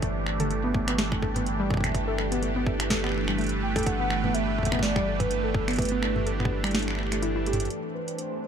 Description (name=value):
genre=IDM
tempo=125 BPM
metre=4/4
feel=swing 56% on 16ths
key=unclear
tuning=A4 = 440 Hz
part: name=phased analog pad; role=sustained chords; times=0.0-8.5 s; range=E3 to D5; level=-30 LUFS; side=right 4 dB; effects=phaser, chorus
part: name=warbly dusty pluck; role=arpeggios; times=0.0-7.7 s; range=G3 to A4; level=-31 LUFS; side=left 2 dB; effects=chorus, tape echo
part: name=warm sub bass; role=bass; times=0.0-7.7 s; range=G1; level=-32 LUFS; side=equal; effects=tube saturation
part: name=booming analog drum machine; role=drums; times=0.0-8.3 s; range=finger snaps, hi-hat, snare drum, toms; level=-31 LUFS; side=right 1 dB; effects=overdrive
part: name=electronic kick drum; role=drums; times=0.0-6.5 s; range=none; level=-28 LUFS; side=equal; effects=none
part: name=warbly nostalgic lead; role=melody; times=3.6-8.5 s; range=G4 to G5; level=-34 LUFS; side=equal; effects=chorus, ping-pong delay
part: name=bubbling stepped-filter texture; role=texture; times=7.7-8.5 s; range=C4 to C5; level=-39 LUFS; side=right 4 dB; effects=chorus, built-in reverb
room=light reverb, digital ambience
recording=dark, warm production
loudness=-24 LUFS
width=side -8 dB against mid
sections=0.0-7.7 A section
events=kick drops out 6.7-7.7; drum fill 7.5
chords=0.0 G; 7.7 Amadd9